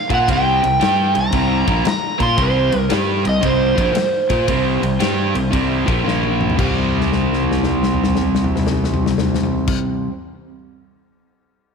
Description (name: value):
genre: blues rock power trio and southern rock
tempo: 114 BPM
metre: 4/4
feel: swing 66% on 8ths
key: unclear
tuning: A4 = 440 Hz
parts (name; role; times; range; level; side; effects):
- overdriven slide guitar; melody; 0.0-6.0 s; C5 to C6; -19 LUFS; right 1 dB; none
- crunchy overdriven guitar; riff; 0.1-10.1 s; Bb2 to Bb4; -19 LUFS; right 1 dB; spring reverb
- fuzz fingered electric bass; bass; 0.1-9.7 s; Bb1 to Bb2; -23 LUFS; right 1 dB; overdrive
- big rock drum kit; drums; 0.1-9.8 s; crash cymbal, kick drum, ride cymbal, snare drum, toms; -22 LUFS; left 3 dB; none
room: moderate echo chamber reverb, RT60 2.1 s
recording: 1960s-style stereo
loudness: -15 LUFS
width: side -5 dB against mid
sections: 0.0-6.6 A section; 6.6-10.8 B section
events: drum fill 6.1-6.6, 6.9-9.7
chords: 0.0 C5; 6.1 Bb5; 6.6 C5